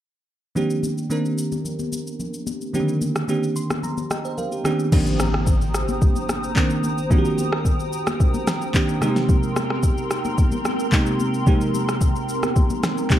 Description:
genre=amapiano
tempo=110 BPM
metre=4/4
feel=straight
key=C minor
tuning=A4 = 438 Hz
part: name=bell-like FM electric piano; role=accompaniment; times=0.6-13.2 s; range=C3 to C6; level=-23 LUFS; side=right 1 dB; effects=chorus
part: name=smooth R&B drum kit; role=drums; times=0.6-13.2 s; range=crash cymbal, handclaps, kick drum, rim click, shaker, snare drum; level=-21 LUFS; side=equal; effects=none
part: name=congas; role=percussion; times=0.6-13.2 s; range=none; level=-30 LUFS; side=left 3 dB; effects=none
part: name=hollow soft pad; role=sustained chords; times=4.9-13.2 s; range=C4 to Eb6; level=-28 LUFS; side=right 1 dB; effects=ensemble chorus, sidechain pumping
part: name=impact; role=sound effects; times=4.9-7.1 s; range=none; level=-27 LUFS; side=equal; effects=none
room=little or no reverb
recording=dark, warm production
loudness=-19 LUFS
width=side -12 dB against mid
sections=0.6-4.9 A section; 4.9-13.2 B section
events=FM electric piano fill 3.3-4.9; impact 4.9-7.1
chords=0.6 Cm7; 9.0 Abmaj9/C

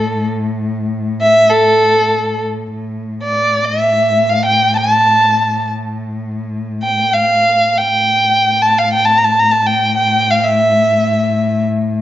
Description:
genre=Turkish makam ensemble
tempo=free time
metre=none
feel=none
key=unclear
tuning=A4 = 440 Hz
part: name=warm violin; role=melody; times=0.0-11.6 s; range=A4 to Bb5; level=-12 LUFS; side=equal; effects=none
part: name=dark cello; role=drone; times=0.0-12.0 s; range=A2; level=-20 LUFS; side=left 2 dB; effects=none
room=moderate recital hall reverb, RT60 1.5 s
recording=nothing above 7.5 kHz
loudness=-11 LUFS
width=side -13 dB against mid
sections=0.0-2.7 A section; 2.7-12.0 A section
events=none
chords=none

